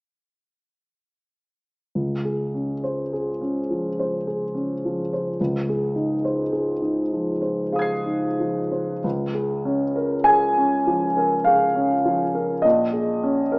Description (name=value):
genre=classical, impressionist solo piano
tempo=50 BPM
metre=3/4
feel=uneven beats, rubato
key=Db major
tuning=A4 = 442 Hz
part: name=clear grand piano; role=solo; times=2.0-13.6 s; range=Bb1 to C7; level=-20 LUFS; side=equal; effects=none
room=wet large studio reverb, RT60 1.2 s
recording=small speaker sound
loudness=-20 LUFS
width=side -34 dB against mid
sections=1.9-9.0 A section; 9.0-13.6 B section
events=none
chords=1.9 Dbmaj7; 5.4 Fm7/Db; 9.0 Db6; 12.6 Bbm7